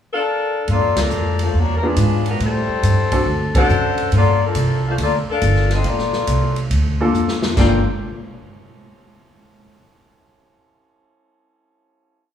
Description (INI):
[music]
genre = jazz, big band swing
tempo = 139 BPM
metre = 4/4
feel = swing 67% on 8ths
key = G minor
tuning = A4 = 440 Hz
[part]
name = mellow saxophone section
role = melody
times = 0.1-7.8 s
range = F3 to G5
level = -20 LUFS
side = left 3 dB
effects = none
[part]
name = upright bass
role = bass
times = 0.7-7.8 s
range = G1 to A2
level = -18 LUFS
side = equal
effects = none
[part]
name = swinging big-band drum kit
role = drums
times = 0.7-7.7 s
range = crash cymbal, hi-hat, kick drum, ride cymbal, snare drum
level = -25 LUFS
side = equal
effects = none
[part]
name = bright upright piano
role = accompaniment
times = 1.8-3.7, 7.0-7.8 s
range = Bb3 to A4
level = -21 LUFS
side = left 1 dB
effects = none
[sound]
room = moderate large studio reverb, RT60 1.3 s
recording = band playing live in one room, small room reverb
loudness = -15 LUFS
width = side -9 dB against mid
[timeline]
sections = 0.0-0.7 pickup bar; 0.7-7.6 A section; 7.6-9.3 final chord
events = band accent 0.9, 3.5; drum fill 7.1-7.6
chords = 0.0 Dm; 0.7 Gm9; 1.5 E7b9; 2.4 Am7; 3.3 D7; 4.1 Gm9